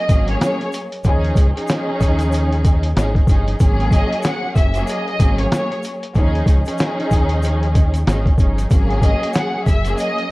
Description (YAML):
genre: hip hop, boom-bap hip-hop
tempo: 94 BPM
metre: 4/4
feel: swing 60% on 16ths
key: unclear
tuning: A4 = 440 Hz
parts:
  - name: clear studio violin section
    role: melody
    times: 0.0-10.3 s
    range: C#5 to F#5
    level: -24 LUFS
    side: equal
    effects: high-pass filter, low-pass filter
  - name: warm studio string section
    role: accompaniment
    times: 0.0-10.3 s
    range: E#3 to G#4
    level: -22 LUFS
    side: equal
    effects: cassette tape, high-pass filter, low-pass filter
  - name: deep dub fingered electric bass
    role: bass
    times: 0.1-9.9 s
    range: F#1 to D#2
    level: -19 LUFS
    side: equal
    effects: transformer saturation
  - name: trip hop sampler-style drum kit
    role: drums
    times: 0.1-10.3 s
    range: hi-hat, kick drum, snare drum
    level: -17 LUFS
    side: equal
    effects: none
  - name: tube shaker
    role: percussion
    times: 0.1-10.2 s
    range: none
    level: -43 LUFS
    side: left 1 dB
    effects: none
room: little or no reverb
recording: worn, warbling old tape, cassette tape, warbly pitch drift, lossy compression artefacts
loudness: -15 LUFS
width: side -21 dB against mid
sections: 0.0-10.3 A section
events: none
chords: 0.0 G#9sus4; 1.0 D#9sus4; 3.6 G#9sus4; 6.2 D#9sus4; 8.7 G#9sus4